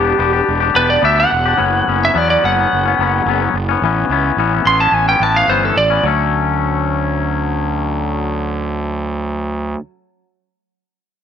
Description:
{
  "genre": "rock",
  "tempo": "107 BPM",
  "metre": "4/4",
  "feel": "straight",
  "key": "D major",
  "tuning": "A4 = 440 Hz",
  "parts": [
    { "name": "lightly driven lead guitar", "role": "melody", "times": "0.0-6.0 s", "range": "G4 to C6", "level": "-15 LUFS", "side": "right 2 dB", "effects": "slapback echo" },
    { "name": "twangy electric guitar", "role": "riff", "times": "0.0-9.8 s", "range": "E3 to G4", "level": "-17 LUFS", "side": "left 9 dB", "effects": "none" },
    { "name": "fuzz fingered electric bass", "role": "bass", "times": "0.0-9.7 s", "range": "E1 to E2", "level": "-19 LUFS", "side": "right 2 dB", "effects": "overdrive" }
  ],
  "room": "light reverb",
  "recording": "1960s-style stereo",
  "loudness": "-13 LUFS",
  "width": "side -8 dB against mid",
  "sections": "0.0-6.1 A section; 6.1-8.3 B section",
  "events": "lead electric guitar solo 0.0-6.1",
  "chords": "0.0 Em7; 1.6 F#sus4; 3.8 Aadd9; 6.1 Dmaj7"
}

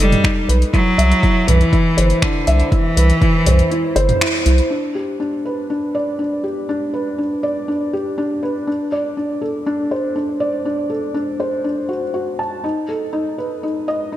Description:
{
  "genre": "piano and strings electronica",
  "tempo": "121 BPM",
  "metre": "4/4",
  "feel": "straight",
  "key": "unclear",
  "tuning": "A4 = 439 Hz",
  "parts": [
    { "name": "bright cello", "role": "melody", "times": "0.0-4.2 s", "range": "D3 to G3", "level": "-18 LUFS", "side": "equal", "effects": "none" },
    { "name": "felt-muted upright piano", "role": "riff", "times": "0.0-14.2 s", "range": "D4 to A5", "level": "-19 LUFS", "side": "equal", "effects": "tape echo, shimmer reverb" },
    { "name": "round analog bass", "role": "bass", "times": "0.0-4.6 s", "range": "F#1 to C2", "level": "-14 LUFS", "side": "equal", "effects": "sidechain pumping" },
    { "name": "deep house drum kit", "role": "drums", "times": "0.0-4.7 s", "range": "finger snaps, hi-hat, toms", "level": "-21 LUFS", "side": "equal", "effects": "overdrive, low-pass filter on hats, low-pass filter on toms, low-pass filter on snare, low-pass filter on room" },
    { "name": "electronic kick drum", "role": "drums", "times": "0.2-3.3 s", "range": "none", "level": "-17 LUFS", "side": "equal", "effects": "overdrive" }
  ],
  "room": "light reverb",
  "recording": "none",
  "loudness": "-16 LUFS",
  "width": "side -13 dB against mid",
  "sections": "0.0-4.7 A section; 4.7-14.2 B section",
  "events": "kick drops out 3.7-4.7; band accent 4.2",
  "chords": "0.0 B7; 0.7 Cmaj7; 4.7 Dsus4; 8.7 D7; 12.6 B7"
}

